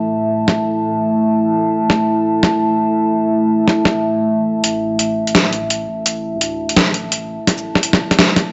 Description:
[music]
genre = half-time drum and bass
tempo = 169 BPM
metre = 4/4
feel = swing 58% on 16ths, half-time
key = unclear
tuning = A4 = 440 Hz
[part]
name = dark analog pad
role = sustained chords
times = 0.0-8.5 s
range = A3 to A5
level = -19 LUFS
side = equal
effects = chorus, phaser
[part]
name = boom bap sampler-style drum kit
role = drums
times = 0.5-8.4 s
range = hi-hat, shaker, snare drum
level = -16 LUFS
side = equal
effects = studio reverb
[part]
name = saturated sub bass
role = bass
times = 4.6-8.5 s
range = A1 to D2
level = -34 LUFS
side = equal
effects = tube saturation, high-pass filter
[sound]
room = moderate echo chamber reverb, RT60 1.4 s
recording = dry, gritty hardware recording, nothing above 7.9 kHz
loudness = -16 LUFS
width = mono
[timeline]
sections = 0.0-4.6 A section; 4.6-8.5 B section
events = filter sweep on analog synth pad 0.0-4.6; build-up 4.6-8.5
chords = 0.0 A5

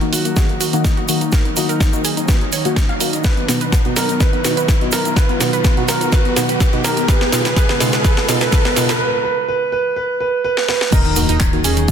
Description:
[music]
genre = progressive house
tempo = 125 BPM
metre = 4/4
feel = straight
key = Eb minor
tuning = A4 = 440 Hz
[part]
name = warm grand piano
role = melody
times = 0.0-11.9 s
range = Eb4 to B4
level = -22 LUFS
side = right 2 dB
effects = sidechain pumping, ping-pong delay
[part]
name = airy breathy pad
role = sustained chords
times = 0.0-11.9 s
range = Db3 to F4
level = -26 LUFS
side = right 1 dB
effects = chorus, sidechain pumping
[part]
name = analog pluck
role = arpeggios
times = 0.0-11.9 s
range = Eb3 to F5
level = -24 LUFS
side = left 1 dB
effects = chorus, sidechain pumping, dub echo
[part]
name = deep mellow chord stab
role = stabs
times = 0.0-11.9 s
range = B2 to Gb4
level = -23 LUFS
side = right 1 dB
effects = chorus, sidechain pumping
[part]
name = house drum kit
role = drums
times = 0.0-11.9 s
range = crash cymbal, handclaps, hi-hat, snare drum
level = -21 LUFS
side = right 1 dB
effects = high-pass filter on snare, high-pass filter on hats, high-pass filter on cymbals, high-pass filter on room
[part]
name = riser and impact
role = sound effects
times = 0.0-11.9 s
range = none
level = -25 LUFS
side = equal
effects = none
[part]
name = egg shaker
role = percussion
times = 0.1-11.9 s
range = none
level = -27 LUFS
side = right 2 dB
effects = none
[part]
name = electronic kick drum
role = drums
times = 0.4-11.9 s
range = none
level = -15 LUFS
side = equal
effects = none
[part]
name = round analog bass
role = bass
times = 10.9-11.9 s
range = Eb2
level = -19 LUFS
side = equal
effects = sidechain pumping
[sound]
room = light reverb, digital ambience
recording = dense, heavily limited modern master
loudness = -14 LUFS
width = side -8 dB against mid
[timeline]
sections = 0.0-10.9 A section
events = build-up 0.0-10.9; drum fill 0.0-9.0, 10.6-10.9; riser 0.0-9.0; filter sweep on synth pluck 0.0-10.9; filter sweep on analog synth pad 0.0-10.9; break 9.0-10.9; impact 10.9-11.9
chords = 0.0 Ebm; 3.2 B; 7.1 Db7; 10.9 Ebm

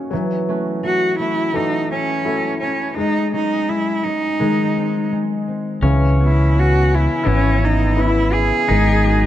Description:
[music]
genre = acoustic folk-pop ballad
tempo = 84 BPM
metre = 4/4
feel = straight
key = C# minor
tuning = A4 = 440 Hz
[part]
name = warm upright piano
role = accompaniment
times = 0.0-9.3 s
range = C#3 to A4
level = -22 LUFS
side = left 4 dB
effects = none
[part]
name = concert harp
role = arpeggios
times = 0.0-9.3 s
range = D#3 to G#4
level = -25 LUFS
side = right 3 dB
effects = none
[part]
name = rich cello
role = melody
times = 0.8-9.3 s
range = C#4 to G#4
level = -19 LUFS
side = right 1 dB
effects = none
[part]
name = pedal steel guitar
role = second line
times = 5.8-9.3 s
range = C#4 to E4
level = -24 LUFS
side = left 4 dB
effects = none
[part]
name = fingered electric bass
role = bass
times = 5.8-9.3 s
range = G#1 to C#2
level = -16 LUFS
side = equal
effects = none
[sound]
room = light reverb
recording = dark, warm production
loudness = -15 LUFS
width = side -12 dB against mid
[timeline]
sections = 0.0-9.3 A section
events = none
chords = 0.1 F#m7; 3.0 G#sus4; 4.4 G#; 5.8 C#m7; 8.7 G#7sus4

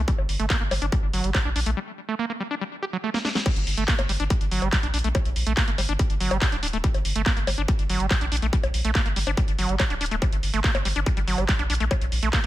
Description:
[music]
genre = psychedelic trance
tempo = 142 BPM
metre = 4/4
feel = straight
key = G harmonic minor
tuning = A4 = 439 Hz
[part]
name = round analog bass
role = bass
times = 0.0-12.5 s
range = D1 to Bb1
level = -26 LUFS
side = equal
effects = none
[part]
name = overdriven acid bass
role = riff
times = 0.1-12.5 s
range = F#3 to G4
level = -28 LUFS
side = moving between left 4 dB and right 5 dB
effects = distortion, auto-pan, vintage 12-bit sampler grit, sidechain pumping, digital delay
[part]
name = electronic kick drum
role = drums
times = 0.1-12.4 s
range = none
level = -24 LUFS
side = equal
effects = distortion
[part]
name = techno drum kit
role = drums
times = 0.1-12.5 s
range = bongos, crash cymbal, handclaps, hi-hat, snare drum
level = -28 LUFS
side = left 1 dB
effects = none
[sound]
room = little or no reverb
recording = none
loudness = -22 LUFS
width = side -14 dB against mid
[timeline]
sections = 0.0-3.5 A section; 3.5-12.5 B section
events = break 1.8-3.5; drum fill 3.1-3.5; drop 3.5-12.5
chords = 0.0 G5

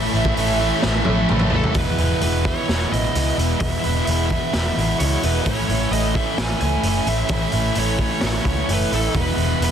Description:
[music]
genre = rock, shoegaze and dream pop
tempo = 130 BPM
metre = 4/4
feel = straight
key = E major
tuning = A4 = 440 Hz
[part]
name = fuzz lead guitar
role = melody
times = 0.0-9.7 s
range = A4 to G#5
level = -27 LUFS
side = left 1 dB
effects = distortion, tape echo
[part]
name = biting overdriven guitar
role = riff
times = 0.0-9.7 s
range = E2 to E4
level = -24 LUFS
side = right 13 dB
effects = reverse reverb
[part]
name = biting overdriven guitar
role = riff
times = 0.0-1.7 s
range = A2 to A3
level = -26 LUFS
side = equal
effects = none
[part]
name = thick fuzz guitar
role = riff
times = 0.0-9.7 s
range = E2 to A3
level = -25 LUFS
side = left 12 dB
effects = distortion, wide subtle chorus
[part]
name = vintage muted picked electric bass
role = bass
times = 0.0-9.7 s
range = E1 to C#2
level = -23 LUFS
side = equal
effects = none
[part]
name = raw garage drum kit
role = drums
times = 0.2-9.7 s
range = hi-hat, kick drum, snare drum, toms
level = -24 LUFS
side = equal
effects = none
[sound]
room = studio reverb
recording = dense, heavily limited modern master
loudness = -17 LUFS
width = side -8 dB against mid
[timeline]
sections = 0.0-1.8 A section; 1.8-9.7 B section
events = drum fill 0.8-1.8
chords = 0.0 A; 1.8 E; 5.5 A; 9.2 E

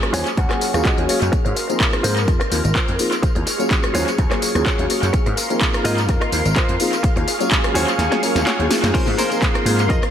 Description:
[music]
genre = filtered disco house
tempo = 126 BPM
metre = 4/4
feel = swing 54% on 16ths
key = Ab mixolydian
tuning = A4 = 440 Hz
[part]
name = dark concert grand piano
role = accompaniment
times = 0.0-9.8 s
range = F3 to F5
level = -23 LUFS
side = left 1 dB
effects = phaser, sidechain pumping, low-pass filter, tape echo
[part]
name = string machine, full ensemble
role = sustained chords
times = 0.0-10.1 s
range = Ab4 to F6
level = -25 LUFS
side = equal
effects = ensemble chorus, vintage 12-bit sampler grit, sidechain pumping, low-pass filter
[part]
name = punchy analog drum machine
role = drums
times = 0.0-10.1 s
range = crash cymbal, handclaps, hi-hat, rim click, snare drum, tambourine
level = -22 LUFS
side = equal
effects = overdrive, sidechain pumping on hats, sidechain pumping on cymbals, sidechain pumping on perc, tape echo
[part]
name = direct-recorded clean electric guitar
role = riff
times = 0.1-10.0 s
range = F4 to Ab5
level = -26 LUFS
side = right 1 dB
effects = sidechain pumping, low-pass filter, tape echo
[part]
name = vintage slap bass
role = bass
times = 0.1-10.0 s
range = Ab1 to Ab2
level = -22 LUFS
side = equal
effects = tube saturation, sidechain pumping, low-pass filter
[part]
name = electronic kick drum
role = drums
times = 0.4-10.0 s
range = none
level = -20 LUFS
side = equal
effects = none
[sound]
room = light reverb, digital ambience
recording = echo-heavy mix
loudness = -16 LUFS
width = side -9 dB against mid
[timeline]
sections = 0.0-8.9 A section; 8.9-10.1 B section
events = clean electric guitar fill 0.0-1.3; filter sweep 0.0-8.9; kick drops out 8.0-8.9; drum fill 8.0-8.9; drop 8.9-10.1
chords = 0.0 Ebm11; 1.3 Ab69; 3.2 Ebm11; 5.1 Ab69; 7.0 Ebm11; 8.9 Ab69

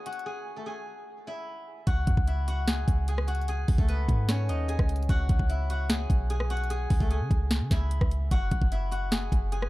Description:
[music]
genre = hip hop, trap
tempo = 149 BPM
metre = 4/4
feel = half-time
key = C# minor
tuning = A4 = 440 Hz
[part]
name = steel-string zither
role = melody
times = 0.0-9.7 s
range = A3 to G#5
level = -34 LUFS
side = left 2 dB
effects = low-pass filter, digital delay
[part]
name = trap drum kit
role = drums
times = 0.1-9.7 s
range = hi-hat, kick drum, rim click, snare drum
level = -26 LUFS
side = equal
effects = none
[part]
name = clean 808-style bass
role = bass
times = 1.9-9.7 s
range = F#1 to C#3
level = -28 LUFS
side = equal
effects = none
[sound]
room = little or no reverb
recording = dark, warm production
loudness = -24 LUFS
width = side -18 dB against mid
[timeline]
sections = 0.0-1.9 A section; 1.9-9.7 B section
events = break 0.3-1.9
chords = 0.0 C#m; 1.9 C#madd9; 8.3 N.C.

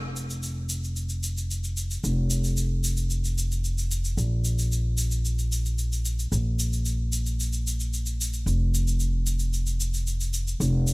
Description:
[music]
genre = sunset chillout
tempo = 112 BPM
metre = 4/4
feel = straight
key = unclear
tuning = A4 = 435 Hz
[part]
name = upright bass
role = bass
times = 0.0-10.9 s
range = F1 to Bb1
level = -25 LUFS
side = equal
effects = none
[part]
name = shaker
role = drums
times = 0.2-10.9 s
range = none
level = -32 LUFS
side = equal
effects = none
[sound]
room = little or no reverb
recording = none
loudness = -24 LUFS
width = side -29 dB against mid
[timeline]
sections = 0.0-10.9 A section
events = none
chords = none

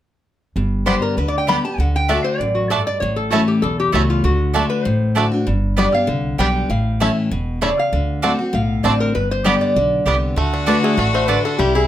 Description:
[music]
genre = bluegrass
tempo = 196 BPM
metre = 4/4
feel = straight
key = G major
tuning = A4 = 437 Hz
[part]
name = picked steel-string acoustic guitar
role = accompaniment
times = 0.6-11.9 s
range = E2 to G4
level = -20 LUFS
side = left 2 dB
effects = none
[part]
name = upright bass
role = bass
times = 0.6-11.9 s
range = E1 to D2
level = -21 LUFS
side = right 1 dB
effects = none
[part]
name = bluegrass banjo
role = melody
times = 0.9-11.9 s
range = G3 to E4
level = -23 LUFS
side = right 3 dB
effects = none
[part]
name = lap resonator guitar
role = melody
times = 0.9-11.9 s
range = F4 to B5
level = -21 LUFS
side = left 1 dB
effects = none
[part]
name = mandolin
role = stabs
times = 0.9-11.4 s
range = A3 to A5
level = -22 LUFS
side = right 5 dB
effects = none
[part]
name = rich fiddle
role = second line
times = 10.4-11.9 s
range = E4 to F#4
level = -23 LUFS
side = left 2 dB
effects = none
[sound]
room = moderate small room reverb, RT60 0.5 s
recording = none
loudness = -16 LUFS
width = side -12 dB against mid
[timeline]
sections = 0.6-10.4 A section; 10.4-11.9 B section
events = none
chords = 0.6 G; 1.8 D; 3.0 A; 4.2 D; 5.5 G; 6.7 A; 7.9 D7; 9.1 G; 10.4 D

